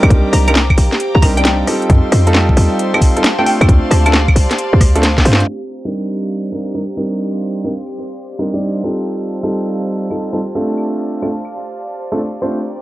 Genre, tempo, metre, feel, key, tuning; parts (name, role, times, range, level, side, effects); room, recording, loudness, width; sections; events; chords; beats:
UK garage, two-step garage; 134 BPM; 4/4; swing 66% on 16ths; C dorian; A4 = 440 Hz
warm studio violin section; sustained chords; 0.0-12.8 s; C4 to D6; -28 LUFS; equal; sidechain pumping, low-pass filter
clear concert grand piano; stabs; 0.0-12.6 s; G3 to D5; -18 LUFS; right 1 dB; low-pass filter, tape echo
short 808-style bass; bass; 0.0-5.4 s; Bb1 to G2; -12 LUFS; equal; tube saturation
garage drum kit; drums; 0.0-11.5 s; claves, hi-hat, rim click, snare drum; -16 LUFS; equal; low-pass filter on hats, small room ambience, low-pass filter on snare, low-pass filter on perc
warbly tape-like pad; texture; 0.0-12.8 s; G4 to Bb5; -26 LUFS; equal; chorus, built-in reverb, sidechain pumping
electronic kick drum; drums; 0.1-5.2 s; -12 LUFS; equal; small room ambience
hollow square pluck; melody; 0.3-4.1 s; G5 to Bb5; -21 LUFS; left 1 dB; lush chorus, tape echo
digital ambience; dry, gritty hardware recording, cassette tape, low-pass filter; -12 LUFS; side -16 dB against mid
0.0-5.5 A section; 5.5-12.8 B section
drum fill 5.0-5.5; filter sweep on drum 5.5-12.8; filter sweep on violin section 5.5-12.8; filter sweep 5.5-12.8
0.0 Cm9; 1.9 F7; 3.5 Dm7; 5.5 Cm9; 9.1 F7; 10.6 Dm7
| 0.11 0.55 1.00 1.45 | 1.90 2.35 2.79 3.24 | 3.69 4.14 4.58 5.03 | 5.48 5.93 6.38 6.82 | 7.27 7.72 8.17 8.61 | 9.06 9.51 9.96 10.40 | 10.85 11.30 11.75 12.20 | 12.64